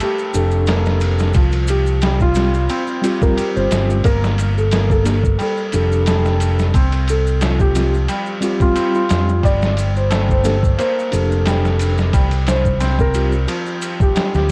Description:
trip hop; 89 BPM; 4/4; swing 54% on 16ths; G minor; A4 = 441 Hz
felt-muted upright piano; melody; 0.0-14.5 s; F4 to D5; -25 LUFS; equal; vintage 12-bit sampler grit, tape echo
felt-muted upright piano; arpeggios; 0.0-14.5 s; F3 to G4; -28 LUFS; equal; digital delay
trip hop sampler-style drum kit; drums; 0.0-14.5 s; kick drum, ride cymbal, snare drum; -22 LUFS; equal; overdrive
maracas; percussion; 0.0-14.5 s; -39 LUFS; equal
mellow tine electric piano; accompaniment; 0.3-13.3 s; G3 to A4; -24 LUFS; equal; harmonic tremolo
fingered electric bass; bass; 0.3-14.5 s; F1 to F2; -19 LUFS; equal; transformer saturation
light reverb, small room ambience; worn, warbling old tape, cassette tape, warbly pitch drift; -17 LUFS; mono
0.0-14.5 A section
0.0 Gmadd9; 1.3 Csus4; 4.0 Gmadd9; 6.7 Csus4; 9.4 Gmadd9; 12.1 Csus4
0.00 0.67 | 1.35 2.02 2.69 3.37 | 4.04 4.72 5.39 6.07 | 6.74 7.41 8.09 8.76 | 9.44 10.11 10.78 11.46 | 12.13 12.81 13.48 14.15

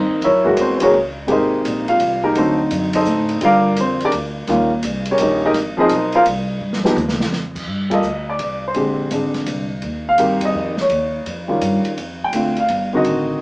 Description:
jazz piano trio; 168 BPM; 3/4; swing 66% on 8ths; G minor from 7.7 s; A4 = 440 Hz
warm baby grand piano; melody; 0.0-13.4 s; C3 to G5; -16 LUFS; equal
upright bass; bass; 0.0-13.4 s; G1 to A2; -24 LUFS; equal
open jazz drum kit; drums; 0.2-13.2 s; crash cymbal, hi-hat, kick drum, ride cymbal, snare drum, toms; -27 LUFS; equal
moderate studio ambience, RT60 0.5 s; band playing live in one room, small speaker sound; -15 LUFS; side -25 dB against mid
0.0-7.7 A section; 7.7-13.4 B section
drum fill 6.6-7.3; band accent 7.9, 10.4
0.2 F#9; 1.3 Abmaj9; 2.4 D7b9; 3.4 Gm7; 4.5 Eb7; 5.5 Ab69; 6.6 G7(#5, no3); 7.7 G5; 8.8 Bb13; 9.8 Eb6; 12.0 F5
| 0.22 0.58 0.93 | 1.29 1.64 2.00 | 2.35 2.71 3.06 | 3.42 3.77 4.13 | 4.48 4.84 5.19 | 5.55 5.91 6.26 | 6.62 6.97 7.33 | 7.69 8.04 8.40 | 8.76 9.11 9.47 | 9.83 10.19 10.54 | 10.90 11.26 11.62 | 11.97 12.33 12.69 | 13.04

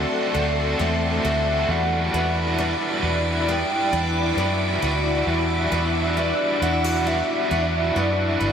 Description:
dream pop; 67 BPM; 4/4; straight; A4 = 440 Hz
hollow clarinet-like synth lead; melody; 0.0-8.5 s; D5 to G5; -27 LUFS; equal; chorus, diffuse ambient delay
overdriven electric guitar; accompaniment; 0.0-8.5 s; D3 to B4; -26 LUFS; right 2 dB; tremolo, wide subtle chorus
soft string machine; sustained chords; 0.0-8.5 s; E4 to D6; -26 LUFS; left 1 dB; ensemble chorus
picked twelve-string acoustic guitar; arpeggios; 0.0-8.5 s; F#3 to F#4; -29 LUFS; left 4 dB; lush chorus, diffuse ambient delay
vintage muted fingered electric bass; bass; 0.0-8.5 s; G1 to F#2; -25 LUFS; equal
wet huge ambient reverb, RT60 7.7 s; dreamy mix soaked in reverb; -19 LUFS; side -8 dB against mid
0.0-8.5 A section
0.0 D7; 1.7 Em9
0.80 | 1.69 2.59 3.48 4.38 | 5.27 6.17 7.07 7.96

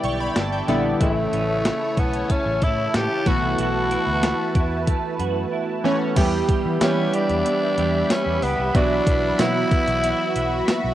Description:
1980s-style pop; 93 BPM; 4/4; straight; E dorian; A4 = 439 Hz
chorused retro synth keys; accompaniment; 0.0-10.9 s; C#3 to C#6; -24 LUFS; right 1 dB
lush unison pad; sustained chords; 0.0-10.9 s; E4 to B5; -28 LUFS; equal; chorus, phaser
twelve-string electric guitar; riff; 0.0-10.9 s; E3 to A4; -32 LUFS; right 8 dB; ensemble chorus, tape echo
vintage muted fingered electric bass; bass; 0.0-10.9 s; G1 to E3; -27 LUFS; equal
clean 12-bit digital drum machine; drums; 0.0-10.8 s; crash cymbal, hi-hat, kick drum, snare drum, tambourine; -22 LUFS; equal; overdrive
growling tenor saxophone; melody; 1.0-10.9 s; A3 to G4; -23 LUFS; left 1 dB; cassette tape
moderate small room reverb, RT60 0.5 s; home recording on cassette; -19 LUFS; side -13 dB against mid
0.0-6.2 A section; 6.2-10.9 B section
synth keys fill 0.0-1.0
0.0 Em7; 1.0 A; 3.3 B7sus4; 6.2 Em; 8.7 Bsus4
0.36 | 1.00 1.65 2.29 2.94 | 3.59 4.23 4.88 5.52 | 6.17 6.81 7.46 8.10 | 8.75 9.39 10.04 10.68

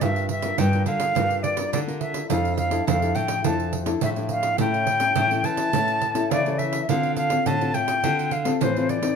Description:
samba and choro; 105 BPM; 4/4; straight; D minor; A4 = 440 Hz
bright concert flute; melody; 0.0-9.2 s; C5 to A5; -24 LUFS; equal
nylon-string guitar; accompaniment; 0.0-9.2 s; A2 to Bb4; -27 LUFS; left 5 dB
nylon-string guitar; bass; 0.0-9.1 s; F2 to E3; -27 LUFS; equal
pandeiro; percussion; 0.0-9.2 s; -28 LUFS; right 8 dB
light reverb; minimal, uncompressed stereo recording; -20 LUFS; side -6 dB against mid
0.0-9.2 A section
0.0 Gm7; 2.3 Dmadd9/F; 4.6 A; 6.9 Dm7
| 0.03 0.59 1.17 1.74 | 2.31 2.88 3.45 4.02 | 4.59 5.17 5.74 6.31 | 6.88 7.46 8.03 8.60

